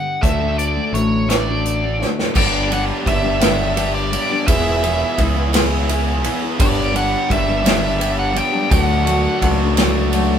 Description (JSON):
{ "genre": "folk rock and heartland rock", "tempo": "57 BPM (dotted quarters)", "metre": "6/8", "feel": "straight", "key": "unclear", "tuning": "A4 = 440 Hz", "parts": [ { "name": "nasal lead guitar with a parked wah", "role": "melody", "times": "0.0-9.5 s", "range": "C#5 to G5", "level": "-22 LUFS", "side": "right 1 dB", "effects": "overdrive, tape echo" }, { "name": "picked steel-string acoustic guitar", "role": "accompaniment", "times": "0.0-10.4 s", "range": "E2 to G#4", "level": "-24 LUFS", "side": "left 5 dB", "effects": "none" }, { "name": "biting overdriven guitar", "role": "riff", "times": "0.0-10.4 s", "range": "E2 to G#4", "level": "-22 LUFS", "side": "equal", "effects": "none" }, { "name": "modern bright picked electric bass", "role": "bass", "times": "0.2-10.4 s", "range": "E1 to D2", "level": "-21 LUFS", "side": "equal", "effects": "none" }, { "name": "natural country drum kit", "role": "drums", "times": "0.2-10.3 s", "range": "crash cymbal, hi-hat, kick drum, ride cymbal, snare drum", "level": "-20 LUFS", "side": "right 1 dB", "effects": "none" }, { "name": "warm upright piano", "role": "accompaniment", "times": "2.3-10.4 s", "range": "F#4 to G#5", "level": "-34 LUFS", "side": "right 3 dB", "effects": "none" }, { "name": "hand-pumped harmonium", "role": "sustained chords", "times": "2.3-10.4 s", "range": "F#4 to B5", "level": "-30 LUFS", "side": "right 2 dB", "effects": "none" }, { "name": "tambourine", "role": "percussion", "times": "2.4-10.2 s", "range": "none", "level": "-36 LUFS", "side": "right 6 dB", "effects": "none" } ], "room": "light reverb", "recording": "band playing live in one room", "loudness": "-15 LUFS", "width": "side -8 dB against mid", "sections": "0.0-2.3 A section; 2.3-10.4 B section", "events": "drum fill 2.0-2.3; upright piano fill 5.5-6.6", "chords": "0.2 D; 2.3 G; 4.5 E; 6.6 G; 8.7 D" }